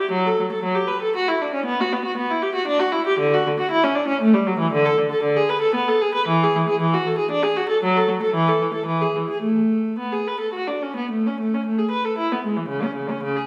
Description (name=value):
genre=classical, baroque-style suite movement for unaccompanied viola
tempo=102-121 BPM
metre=3/4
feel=rubato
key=D major, A major from 4.7 s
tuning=A4 = 440 Hz
part: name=rich viola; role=solo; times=0.0-13.5 s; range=C#3 to B4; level=-21 LUFS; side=equal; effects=none
room=wet recital hall reverb, RT60 1.4 s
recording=recorded in a church or concert hall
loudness=-21 LUFS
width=mono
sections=0.0-11.1 A section; 11.1-13.5 B section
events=none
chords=none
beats=| 0.12 0.64 1.15 | 1.66 2.17 2.68 | 3.20 3.72 4.22 | 4.72 5.23 5.74 | 6.27 6.80 7.32 | 7.82 8.34 8.88 | 9.43 9.99 10.55 | 11.12 11.67 12.18 | 12.70 13.22